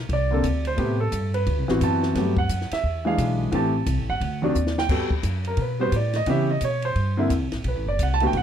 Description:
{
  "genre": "jazz piano trio",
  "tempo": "175 BPM",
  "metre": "4/4",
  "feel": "swing 62% on 8ths",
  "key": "G major",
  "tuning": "A4 = 439 Hz",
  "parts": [
    { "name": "upright bass", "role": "bass", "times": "0.0-8.4 s", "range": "F#1 to C#3", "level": "-25 LUFS", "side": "equal", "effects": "none" },
    { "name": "warm baby grand piano", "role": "melody", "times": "0.1-8.4 s", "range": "C3 to A5", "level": "-24 LUFS", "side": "right 1 dB", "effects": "plate reverb" },
    { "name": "compact cocktail drum kit", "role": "drums", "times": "0.1-8.4 s", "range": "crash cymbal, hi-hat, kick drum, ride cymbal, snare drum", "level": "-31 LUFS", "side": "left 1 dB", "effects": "none" }
  ],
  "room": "light reverb",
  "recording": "dark, warm production",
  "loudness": "-21 LUFS",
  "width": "side -9 dB against mid",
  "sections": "0.0-4.9 A section; 4.9-8.4 A section",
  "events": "grand piano solo 0.0-8.4; drum fill 4.6-4.9",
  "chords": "0.0 Bbadd9 (rootless); 0.8 Am9; 1.5 D13; 2.2 Gmaj9; 2.8 E7b9; 3.5 Am7; 4.2 D(b9); 4.9 Gmaj9; 6.3 C#m7b5; 7.0 C7; 7.7 Bm7"
}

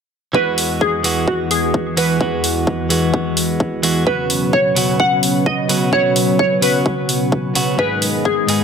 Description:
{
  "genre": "EDM, festival progressive house",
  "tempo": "129 BPM",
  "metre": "4/4",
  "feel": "straight",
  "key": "unclear",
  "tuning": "A4 = 440 Hz",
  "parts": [
    { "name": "glassy wavetable pluck", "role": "melody", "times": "0.3-8.6 s", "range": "F#4 to F#5", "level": "-19 LUFS", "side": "equal", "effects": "chorus, dub echo" },
    { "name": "direct-recorded clean electric guitar", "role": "accompaniment", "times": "0.3-8.6 s", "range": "G#2 to G#4", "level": "-21 LUFS", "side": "right 2 dB", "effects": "sidechain pumping" },
    { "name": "lush unison pad", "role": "sustained chords", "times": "0.3-8.6 s", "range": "E2 to B4", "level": "-20 LUFS", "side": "left 1 dB", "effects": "chorus, sidechain pumping" },
    { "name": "electronic kick drum", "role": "drums", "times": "0.3-8.3 s", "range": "none", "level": "-21 LUFS", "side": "left 1 dB", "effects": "high-pass filter on kick" },
    { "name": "electronic hi-hat", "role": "drums", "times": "0.6-8.6 s", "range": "none", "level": "-20 LUFS", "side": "equal", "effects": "none" }
  ],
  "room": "moderate lush hall reverb, RT60 2.2 s",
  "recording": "none",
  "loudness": "-14 LUFS",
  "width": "side -6 dB against mid",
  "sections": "0.3-8.6 A section",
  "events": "filter sweep on analog synth pad 0.3-8.6",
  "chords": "0.3 Eadd9; 4.1 Bsus2; 7.8 G#m"
}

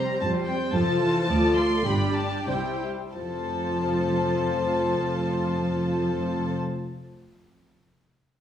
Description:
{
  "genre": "quick classical-period movement for symphony orchestra",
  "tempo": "90-113 BPM",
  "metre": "2/4",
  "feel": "rubato",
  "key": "F major",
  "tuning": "A4 = 441 Hz",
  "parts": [
    { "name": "warm chamber violin section", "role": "melody", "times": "0.0-6.5 s", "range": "G5 to C6", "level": "-33 LUFS", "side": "left 1 dB", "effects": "none" },
    { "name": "warm chamber violin section", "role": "second line", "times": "0.0-6.5 s", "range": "G4 to D5", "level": "-29 LUFS", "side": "left 3 dB", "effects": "none" },
    { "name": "warm chamber viola section", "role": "accompaniment", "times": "0.0-6.5 s", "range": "E3 to F4", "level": "-27 LUFS", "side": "equal", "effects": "none" },
    { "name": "dark chamber cello section", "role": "bass", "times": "0.0-6.5 s", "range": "D2 to F3", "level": "-30 LUFS", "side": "right 1 dB", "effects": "none" },
    { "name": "dark chamber double bass section", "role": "bass", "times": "0.0-6.5 s", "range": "F1 to F2", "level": "-32 LUFS", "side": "right 1 dB", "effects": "none" }
  ],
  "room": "wet recital hall reverb, RT60 1.3 s",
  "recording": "studio reverb",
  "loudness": "-23 LUFS",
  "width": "side -10 dB against mid",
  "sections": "0.0-3.1 A section; 3.1-5.8 B section",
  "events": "slowing down 0.2-3.1",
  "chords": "0.0 C5/F; 0.7 F; 1.3 Dm; 1.9 G; 2.5 C; 3.1 F"
}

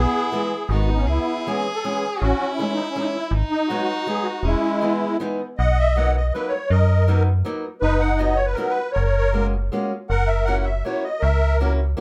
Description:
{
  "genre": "musette waltz",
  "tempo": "160 BPM",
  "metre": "3/4",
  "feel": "straight",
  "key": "E major, B major from 5.6 s",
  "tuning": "A4 = 441 Hz",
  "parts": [
    { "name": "musette accordion", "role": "melody", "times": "0.0-11.7 s", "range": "G#3 to F#5", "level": "-25 LUFS", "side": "equal", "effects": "plate reverb" },
    { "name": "clear violin", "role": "second line", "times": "0.0-5.4 s", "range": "B3 to G#4", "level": "-32 LUFS", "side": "equal", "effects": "none" },
    { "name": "metallic FM bass", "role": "bass", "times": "0.0-11.9 s", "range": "E1 to F#2", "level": "-22 LUFS", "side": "equal", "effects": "none" },
    { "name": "picked old ladder-braced acoustic guitar", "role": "accompaniment", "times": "0.3-12.0 s", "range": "D#3 to F#4", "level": "-29 LUFS", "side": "equal", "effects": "none" }
  ],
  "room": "light reverb",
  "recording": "none",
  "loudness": "-21 LUFS",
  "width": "mono",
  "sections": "0.0-5.6 A section; 5.6-12.0 B section",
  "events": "none",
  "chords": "0.0 E/B; 0.7 G#m; 1.1 C#m7; 2.2 Amaj7; 3.3 G#m7; 4.4 Emaj7; 5.6 Bmaj7; 7.8 B/F#; 8.9 F#add9; 10.1 F#7"
}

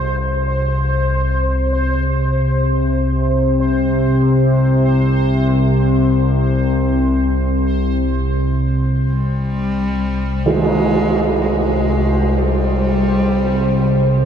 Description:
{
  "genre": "dark ambient drone",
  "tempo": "free time",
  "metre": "none",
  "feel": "none",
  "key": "unclear",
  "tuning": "A4 = 444 Hz",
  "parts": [
    { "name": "analog drone", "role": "drone", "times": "0.0-14.3 s", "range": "C2 to C3", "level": "-16 LUFS", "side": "equal", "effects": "chorus" },
    { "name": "bubbling stepped-filter texture", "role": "texture", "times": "0.0-14.3 s", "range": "C5", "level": "-24 LUFS", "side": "equal", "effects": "chorus, built-in reverb" },
    { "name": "warm cello", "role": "melody", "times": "9.1-14.3 s", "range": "G3 to Ab3", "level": "-19 LUFS", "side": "left 1 dB", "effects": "tape echo" },
    { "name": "tam-tam", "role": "percussion", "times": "10.5-10.7 s", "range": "none", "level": "-20 LUFS", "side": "right 3 dB", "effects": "low-pass filter on cymbals" }
  ],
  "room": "moderate huge ambient reverb, RT60 8.6 s",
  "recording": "cassette tape, nothing above 10.8 kHz",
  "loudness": "-14 LUFS",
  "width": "side -8 dB against mid",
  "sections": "0.0-10.5 A section; 10.5-14.3 B section",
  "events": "fade-out on synth texture 0.0-10.5",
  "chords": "none"
}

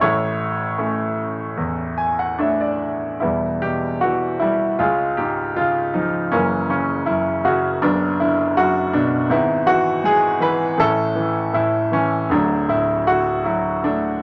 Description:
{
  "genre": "classical, lyrical solo piano",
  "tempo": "70-83 BPM",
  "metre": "4/4",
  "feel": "rubato",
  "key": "unclear",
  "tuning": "A4 = 440 Hz",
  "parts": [
    { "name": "clear baby grand piano", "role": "solo", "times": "0.0-14.2 s", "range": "D1 to G#5", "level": "-20 LUFS", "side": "equal", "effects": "none" }
  ],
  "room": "moderate studio reverb, RT60 0.5 s",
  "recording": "none",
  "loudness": "-20 LUFS",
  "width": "mono",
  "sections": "0.0-3.2 A section; 3.2-14.2 B section",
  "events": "grand piano fill 1.6-3.2",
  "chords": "0.0 A; 3.2 Em; 4.8 C#; 6.3 F#7; 7.8 Bm/F#; 9.3 E/G#; 10.8 A; 12.3 D"
}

